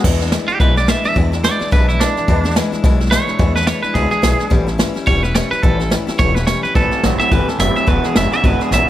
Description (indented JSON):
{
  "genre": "rockabilly",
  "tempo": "215 BPM",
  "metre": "4/4",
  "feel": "swing 58% on 8ths",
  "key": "E mixolydian",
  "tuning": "A4 = 440 Hz",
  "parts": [
    { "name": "picked steel-string acoustic guitar", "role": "accompaniment", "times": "0.0-8.9 s", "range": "E2 to E4", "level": "-22 LUFS", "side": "left 5 dB", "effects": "none" },
    { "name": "upright bass", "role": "bass", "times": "0.0-8.8 s", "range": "E1 to E2", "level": "-19 LUFS", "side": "equal", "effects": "none" },
    { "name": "jazz brush drum kit", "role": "drums", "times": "0.0-8.8 s", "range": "crash cymbal, hi-hat, kick drum, snare drum", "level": "-17 LUFS", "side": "equal", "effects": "none" },
    { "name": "twangy electric guitar", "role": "melody", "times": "0.5-8.9 s", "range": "D4 to E5", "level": "-18 LUFS", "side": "right 3 dB", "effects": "spring reverb, tape echo" },
    { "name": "electric guitar through a small old amp", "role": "riff", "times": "6.7-8.9 s", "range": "E2 to F#3", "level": "-21 LUFS", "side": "right 2 dB", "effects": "spring reverb" }
  ],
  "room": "little or no reverb",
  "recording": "none",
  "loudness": "-13 LUFS",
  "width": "side -13 dB against mid",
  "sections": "0.0-8.9 A section",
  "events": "clean electric guitar solo 0.0-8.9; drum fill 8.7",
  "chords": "0.0 E7; 4.5 A7; 6.7 Am7; 7.9 E7"
}